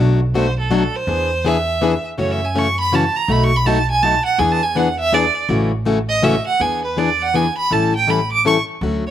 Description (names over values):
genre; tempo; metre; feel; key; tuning
acoustic string swing (jazz manouche); 163 BPM; 3/4; swing 63% on 8ths; A major; A4 = 440 Hz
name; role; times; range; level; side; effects
picked plugged-in steel-string acoustic guitar; accompaniment; 0.0-9.0 s; B2 to A4; -19 LUFS; left 4 dB; none
upright bass; bass; 0.0-9.1 s; A1 to F#2; -22 LUFS; right 1 dB; none
clear violin; melody; 0.3-9.1 s; A4 to D6; -18 LUFS; right 3 dB; slapback echo
room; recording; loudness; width
little or no reverb; recorded outdoors, with no room sound; -15 LUFS; side -10 dB against mid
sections
0.0-6.6 A section; 6.6-9.1 A section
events
violin solo 0.0-9.1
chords
0.0 Bm7; 1.1 E7; 2.2 F#m7; 3.3 B7; 4.4 E7; 5.5 A6; 6.6 E7; 7.7 A7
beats
0.35 0.71 | 1.08 1.45 1.82 | 2.19 2.56 2.92 | 3.29 3.66 4.03 | 4.39 4.76 5.13 | 5.50 5.87 6.23 | 6.60 6.97 7.34 | 7.71 8.08 8.45 | 8.81